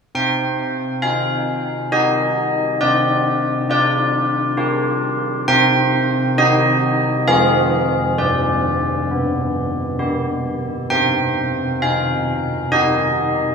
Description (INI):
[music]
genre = classical, tune for church bells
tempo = 67 BPM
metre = 3/4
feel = straight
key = C minor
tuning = A4 = 440 Hz
[part]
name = old church bells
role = solo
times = 0.1-13.5 s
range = F3 to G5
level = -16 LUFS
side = equal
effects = none
[sound]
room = wet cathedral reverb, RT60 4.8 s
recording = heard from further back in the room, small room reverb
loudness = -16 LUFS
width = side -5 dB against mid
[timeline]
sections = 0.1-13.5 A section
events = none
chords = 0.1 Cm; 2.8 G5/C; 5.5 Cm; 7.3 Fm; 8.2 G; 10.9 Cm